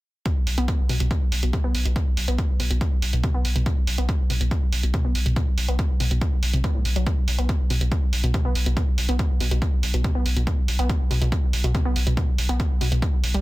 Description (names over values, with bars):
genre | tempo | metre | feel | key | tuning
driving peak-time techno | 141 BPM | 4/4 | straight | unclear | A4 = 440 Hz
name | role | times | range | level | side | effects
wide unison pluck | riff | 0.3-13.4 s | A2 to B3 | -29 LUFS | equal | sidechain pumping, tape echo
electronic hi-hat | drums | 0.3-13.4 s | none | -30 LUFS | right 2 dB | sidechain pumping on hats
electronic kick drum | drums | 0.3-13.1 s | none | -24 LUFS | equal | none
saturated sub bass | bass | 0.4-13.4 s | B1 | -24 LUFS | equal | tube saturation, sidechain pumping, low-pass filter
room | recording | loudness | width
light reverb, digital ambience | dense, heavily limited modern master | -20 LUFS | side -19 dB against mid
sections
0.3-13.4 A section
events
none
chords
0.3 B5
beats
| 0.26 0.68 1.11 1.53 | 1.96 2.38 2.81 3.24 | 3.66 4.09 4.51 4.94 | 5.36 5.79 6.21 6.64 | 7.07 7.49 7.92 8.34 | 8.77 9.19 9.62 10.04 | 10.47 10.89 11.32 11.75 | 12.17 12.60 13.02